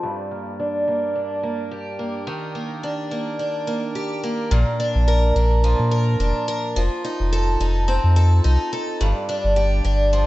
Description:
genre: folktronica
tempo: 107 BPM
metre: 4/4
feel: swing 56% on 16ths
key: Bb major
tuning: A4 = 440 Hz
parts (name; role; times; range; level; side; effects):
- picked twelve-string acoustic guitar; arpeggios; 0.0-10.3 s; G2 to Bb4; -22 LUFS; equal; analog delay
- warm sub bass; bass; 4.5-10.2 s; F1 to Bb2; -17 LUFS; equal; tube saturation
room: light reverb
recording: low-pass filter, nothing above 8.0 kHz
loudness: -19 LUFS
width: side -17 dB against mid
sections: 0.0-4.5 A section; 4.5-10.3 B section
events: filter sweep on twelve-string acoustic guitar 0.0-4.5; filter sweep 0.0-4.5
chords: 0.0 Gm; 2.3 Ebmaj7; 4.5 Bb; 6.8 F7; 9.0 G5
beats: | 0.03 0.59 1.16 1.72 | 2.28 2.84 3.40 3.96 | 4.52 5.08 5.64 6.20 | 6.76 7.32 7.88 8.44 | 9.01 9.57 10.13

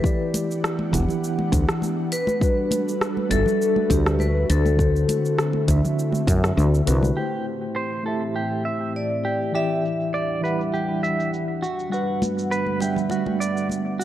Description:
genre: sunset chillout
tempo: 101 BPM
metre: 4/4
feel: swing 53% on 16ths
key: A dorian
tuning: A4 = 440 Hz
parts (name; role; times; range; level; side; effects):
- vibraphone with medium hard mallets; melody; 0.0-11.6 s; G4 to E5; -26 LUFS; left 3 dB; analog delay
- mellow tine electric piano; accompaniment; 0.0-14.0 s; D3 to F#5; -25 LUFS; moving between left 4 dB and right 5 dB; medium stereo tremolo, auto-pan, analog delay
- ethereal airy pad; sustained chords; 0.0-14.0 s; E2 to F#5; -31 LUFS; equal; ensemble chorus, built-in reverb
- electronic kick drum; drums; 0.0-6.4 s; none; -23 LUFS; equal; none
- deep house drum kit; drums; 0.1-14.0 s; cabasa, hi-hat, rim click; -29 LUFS; right 1 dB; low-pass filter on hats, low-pass filter on perc, low-pass filter on snare
- congas; percussion; 0.3-7.1, 12.2-13.8 s; none; -31 LUFS; left 1 dB; none
- woody fretless electric bass; bass; 0.9-7.1 s; E1 to F#2; -20 LUFS; equal; tube saturation
- clean electric guitar; arpeggios; 7.2-14.0 s; F#4 to E5; -28 LUFS; right 2 dB; low-pass filter, analog delay
room: light reverb, digital ambience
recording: dry, gritty hardware recording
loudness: -20 LUFS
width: side -12 dB against mid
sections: 0.0-7.2 A section; 7.2-14.0 B section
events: kick drops out 6.6-7.2; filter sweep on drum 7.2-14.0; filter sweep on ambient pad 7.2-14.0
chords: 0.0 Em7; 2.1 Gmaj7; 4.5 D7; 7.2 Am7; 9.5 Em7; 11.6 Gmaj7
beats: | 0.04 0.63 1.23 1.82 | 2.42 3.01 3.60 4.20 | 4.79 5.39 5.98 6.57 | 7.17 7.76 8.36 8.95 | 9.54 10.14 10.73 11.33 | 11.92 12.52 13.11 13.70

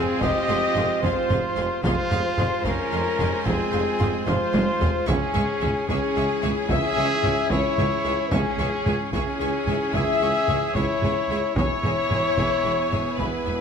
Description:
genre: cinematic, epic orchestral film score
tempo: 74 BPM (dotted quarters)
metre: 12/8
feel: straight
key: unclear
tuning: A4 = 439 Hz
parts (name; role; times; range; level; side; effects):
- rich symphonic violin section; melody; 0.0-13.6 s; Ab4 to Fb5; -30 LUFS; left 1 dB; none
- hollow concert flute; second line; 0.0-13.6 s; Ab5 to Fb6; -32 LUFS; left 1 dB; none
- rich symphonic violin section; second line; 0.0-13.5 s; Fb5 to Db6; -36 LUFS; equal; none
- clear symphonic viola section; accompaniment; 0.0-13.6 s; Ab3 to Ab4; -35 LUFS; right 1 dB; none
- rich symphonic string section; sustained chords; 0.0-13.6 s; Ab3 to Ab5; -35 LUFS; left 1 dB; none
- warm French horn section; sustained chords; 0.0-13.6 s; Ab4 to Fb5; -27 LUFS; left 6 dB; none
- warm trombone section; sustained chords; 0.0-13.6 s; Fb3 to Db4; -34 LUFS; right 5 dB; none
- warm trumpet; stabs; 0.0-13.6 s; C4 to Ab4; -29 LUFS; right 2 dB; none
- clear symphonic cello section; bass; 0.0-13.5 s; Db2 to F2; -33 LUFS; right 3 dB; none
- clear tuba; bass; 0.0-13.6 s; E1 to Db2; -33 LUFS; right 4 dB; none
- rich symphonic double bass section; bass; 0.0-13.5 s; E1 to Db2; -33 LUFS; right 3 dB; none
- taiko ensemble; drums; 0.2-13.6 s; none; -27 LUFS; equal; none
room: moderate scoring stage reverb, RT60 1.5 s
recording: none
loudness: -20 LUFS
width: side -7 dB against mid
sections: 0.0-13.6 A section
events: drum fill 4.3-5.1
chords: 0.0 Fm; 5.1 Dbm; 11.6 E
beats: 0.22 1.03 | 1.84 2.65 3.46 4.27 | 5.08 5.89 6.70 7.51 | 8.32 9.13 9.95 10.76 | 11.57 12.38 13.19

